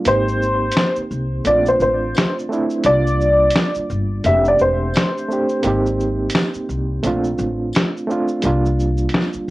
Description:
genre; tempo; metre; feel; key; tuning
lo-fi hip hop; 86 BPM; 4/4; swing 61% on 16ths; unclear; A4 = 441 Hz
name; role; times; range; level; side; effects
bright reed electric piano; accompaniment; 0.0-9.5 s; G3 to G4; -22 LUFS; right 2 dB; fast tremolo, cassette tape
dark upright piano; melody; 0.1-5.6 s; C5 to E5; -18 LUFS; equal; cassette tape, tape echo
upright bass; bass; 0.1-9.5 s; E1 to C2; -21 LUFS; left 1 dB; none
dusty soul sampler-style drum kit; drums; 0.1-9.5 s; hi-hat, shaker, snare drum; -19 LUFS; equal; vintage 12-bit sampler grit
tambourine; percussion; 0.8-9.3 s; none; -42 LUFS; left 4 dB; none
room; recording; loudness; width
moderate small room ambience, RT60 0.5 s; home recording on cassette; -16 LUFS; side -18 dB against mid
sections
0.1-9.5 A section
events
break 0.1-9.5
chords
0.1 Abmaj7; 1.5 Bbmaj7; 2.8 C7sus4; 4.2 F6; 5.6 Abmaj7; 7.0 Bbmaj7; 8.4 C7sus4

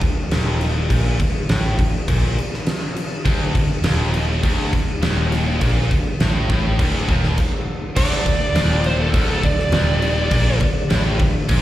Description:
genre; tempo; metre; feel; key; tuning
hard rock; 102 BPM; 4/4; straight; unclear; A4 = 440 Hz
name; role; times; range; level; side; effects
tight distorted guitar; riff; 0.0-11.6 s; D2 to Bb2; -25 LUFS; equal; distortion, slapback echo
hollow-body short-scale fingered electric bass; bass; 0.0-11.6 s; D1 to Bb1; -20 LUFS; equal; none
huge arena drum kit; drums; 0.0-11.6 s; crash cymbal, kick drum, snare drum; -21 LUFS; equal; none
high-gain distorted guitar; riff; 3.3-11.6 s; D2 to Bb2; -25 LUFS; equal; distortion, slapback echo
smooth overdriven lead guitar; melody; 8.0-10.6 s; A4 to D5; -23 LUFS; right 1 dB; plate reverb, slapback echo, analog delay
room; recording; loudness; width
light reverb; live gig heard through the venue's PA, recital hall reverb; -16 LUFS; side -14 dB against mid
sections
0.0-8.0 A section; 8.0-11.6 B section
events
stop 7.4-8.0; lead electric guitar solo 8.0-11.6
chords
0.0 D5

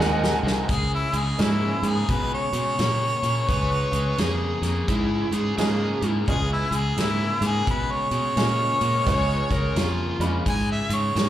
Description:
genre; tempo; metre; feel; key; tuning
electric blues shuffle; 86 BPM; 4/4; swing 63% on 8ths; Db mixolydian; A4 = 440 Hz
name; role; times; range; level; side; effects
overdriven slide guitar; second line; 0.0-10.3 s; Fb4 to Ab5; -29 LUFS; right 1 dB; slapback echo
honky-tonk upright piano; accompaniment; 0.0-10.4 s; F3 to Cb6; -29 LUFS; right 4 dB; slapback echo
crunchy overdriven guitar; riff; 0.0-11.3 s; Ab2 to Bb3; -30 LUFS; left 4 dB; slapback echo
fingered electric bass; bass; 0.0-11.3 s; C2 to Cb3; -25 LUFS; equal; none
natural country drum kit; drums; 0.0-11.3 s; hi-hat, kick drum, snare drum; -28 LUFS; equal; none
clear harmonica; melody; 0.7-11.3 s; Fb4 to Ab5; -26 LUFS; equal; overdrive, slapback echo
room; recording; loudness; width
light reverb, studio ambience; live gig heard through the venue's PA, club reverb; -21 LUFS; side -12 dB against mid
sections
0.7-11.3 A section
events
drum fill 0.0-0.7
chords
0.0 Ab7; 0.7 Db7

